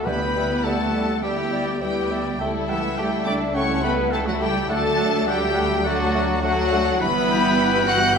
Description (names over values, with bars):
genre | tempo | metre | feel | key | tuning
quick classical-period movement for symphony orchestra | 104 BPM | 4/4 | straight | D major | A4 = 439 Hz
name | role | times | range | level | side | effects
mellow clarinet | second line | 0.0-8.2 s | B4 to G5 | -30 LUFS | left 3 dB | none
mellow flute section | second line | 0.0-7.9 s | E4 to F#5 | -31 LUFS | left 2 dB | none
warm symphonic violin section | second line | 0.0-8.2 s | B3 to A4 | -30 LUFS | left 4 dB | none
warm studio viola section | accompaniment | 0.0-8.2 s | E3 to B3 | -28 LUFS | right 4 dB | none
warm French horn section | sustained chords | 0.0-8.0 s | E3 to F#4 | -27 LUFS | left 3 dB | none
clear trumpet | stabs | 0.0-8.2 s | E4 to F#5 | -27 LUFS | right 2 dB | none
rich studio double bass section | bass | 0.0-8.2 s | G1 to D2 | -29 LUFS | right 3 dB | none
warm studio cello section | bass | 0.0-8.2 s | E3 to F#4 | -30 LUFS | right 3 dB | none
warm studio violin section | melody | 0.1-8.2 s | E5 to F#6 | -27 LUFS | left 4 dB | none
mellow cor anglais | second line | 0.1-8.2 s | E5 to G5 | -35 LUFS | right 1 dB | none
warm bassoon | accompaniment | 0.1-8.1 s | E3 to A3 | -32 LUFS | right 1 dB | none
timpani | percussion | 0.1-0.9 s | D3 | -35 LUFS | left 2 dB | none
room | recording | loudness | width
wet scoring stage reverb, RT60 1.6 s | none | -19 LUFS | side -6 dB against mid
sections
0.0-8.2 A section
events
none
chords
0.1 Em7/D; 2.4 A7/C#; 4.7 D; 7.0 Em/G